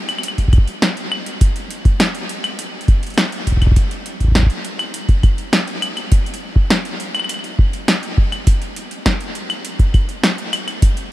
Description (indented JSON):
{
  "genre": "IDM",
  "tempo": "102 BPM",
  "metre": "4/4",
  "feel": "straight",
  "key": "none",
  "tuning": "none",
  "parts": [
    { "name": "electro analog drum machine", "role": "drums", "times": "0.1-11.1 s", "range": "claves, hi-hat, snare drum", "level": "-20 LUFS", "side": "equal", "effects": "diffuse ambient delay" },
    { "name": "electronic kick drum", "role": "drums", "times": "0.4-10.9 s", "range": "none", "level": "-13 LUFS", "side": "equal", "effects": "none" }
  ],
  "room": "light reverb",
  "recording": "none",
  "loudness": "-15 LUFS",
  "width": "side -16 dB against mid",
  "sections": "0.0-11.1 A section",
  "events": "none",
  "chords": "none",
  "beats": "0.23 0.82 | 1.41 2.00 2.59 3.18 | 3.76 4.35 4.94 5.53 | 6.12 6.71 7.29 7.88 | 8.47 9.06 9.65 10.23 | 10.82"
}